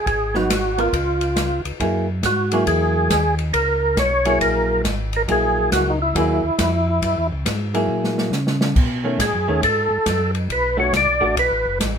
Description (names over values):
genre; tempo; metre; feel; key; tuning
soul jazz organ trio; 138 BPM; 4/4; swing 65% on 8ths; F# mixolydian; A4 = 440 Hz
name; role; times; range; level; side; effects
overdriven tonewheel organ; melody; 0.0-11.8 s; D#4 to D5; -19 LUFS; equal; slow rotary speaker, chorus vibrato
mellow tonewheel organ; bass; 0.1-12.0 s; F#1 to C#3; -24 LUFS; equal; slow rotary speaker
open jazz drum kit; drums; 0.1-11.9 s; crash cymbal, hi-hat, kick drum, ride cymbal, snare drum; -24 LUFS; equal; none
vintage hollow-body jazz guitar; accompaniment; 0.3-11.4 s; D#3 to A#4; -22 LUFS; right 1 dB; none
room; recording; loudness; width
light reverb; minimal, uncompressed stereo recording; -17 LUFS; side -7 dB against mid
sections
0.0-1.8 A section; 1.8-12.0 A section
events
drum fill 7.9-8.8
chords
0.1 G#m7; 0.9 C#; 1.8 F#9; 8.8 B9; 10.5 Bm7